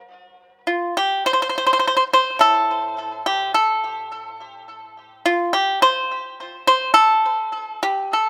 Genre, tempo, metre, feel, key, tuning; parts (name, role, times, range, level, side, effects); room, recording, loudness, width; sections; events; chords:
chinese traditional, Chinese solo plucked strings; 52 BPM; 2/4; rubato; A4 = 439 Hz
pipa; solo; 0.0-8.3 s; A2 to C5; -19 LUFS; equal; tape echo
light reverb; close, detailed microphones; -19 LUFS; mono
0.0-8.3 A section